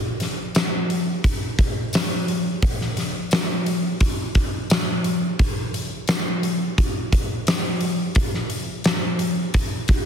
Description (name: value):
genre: rock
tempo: 87 BPM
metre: 4/4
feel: straight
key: none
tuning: none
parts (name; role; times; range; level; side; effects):
- huge arena drum kit; drums; 0.2-10.0 s; hi-hat, kick drum, snare drum; -20 LUFS; equal; none
- tambourine; percussion; 0.5-9.0 s; none; -37 LUFS; left 3 dB; none
room: light reverb, small room ambience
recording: dense, heavily limited modern master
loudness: -20 LUFS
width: side -8 dB against mid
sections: 0.0-10.1 A section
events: none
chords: none